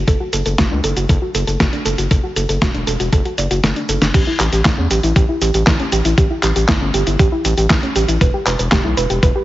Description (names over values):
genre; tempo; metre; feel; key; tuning
italo disco; 118 BPM; 4/4; straight; unclear; A4 = 442 Hz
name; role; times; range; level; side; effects
round analog bass; bass; 0.0-9.3 s; E1 to E2; -19 LUFS; equal; tube saturation
soft round pluck; arpeggios; 0.1-9.4 s; C#4 to D5; -20 LUFS; right 2 dB; chorus, digital delay
dusty soul sampler-style drum kit; drums; 0.1-9.3 s; cabasa, crash cymbal, handclaps, hi-hat, snare drum; -19 LUFS; equal; studio reverb
electronic kick drum; drums; 0.1-9.3 s; none; -16 LUFS; equal; studio reverb
room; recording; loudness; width
light reverb; heavily compressed radio sound, nothing above 7.6 kHz; -14 LUFS; side -15 dB against mid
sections
0.0-4.1 A section; 4.1-9.4 B section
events
kick drops out 3.6-4.1; drum fill 3.6-4.1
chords
0.1 D/F#; 4.1 A7; 8.2 Em